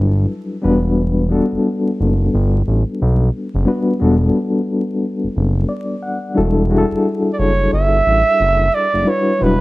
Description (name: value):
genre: R&B, neo-soul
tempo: 89 BPM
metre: 4/4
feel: swing 59% on 16ths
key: E dorian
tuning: A4 = 438 Hz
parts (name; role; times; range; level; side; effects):
- mellow reed electric piano; accompaniment; 0.0-9.6 s; F#3 to F#5; -18 LUFS; left 2 dB; tremolo, plate reverb
- smooth synth bass; bass; 0.0-9.6 s; E1 to B1; -16 LUFS; equal; none
- warm flugelhorn; melody; 7.3-9.6 s; B4 to E5; -15 LUFS; right 3 dB; plate reverb
room: light reverb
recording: vinyl crackle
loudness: -14 LUFS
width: side -19 dB against mid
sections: 0.0-9.6 A section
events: reed electric piano fill 5.3-6.4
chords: 0.0 Em11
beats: 0.29 | 0.97 1.64 2.31 2.99 | 3.66 4.34 5.01 5.69 | 6.36 7.03 7.71 8.38 | 9.06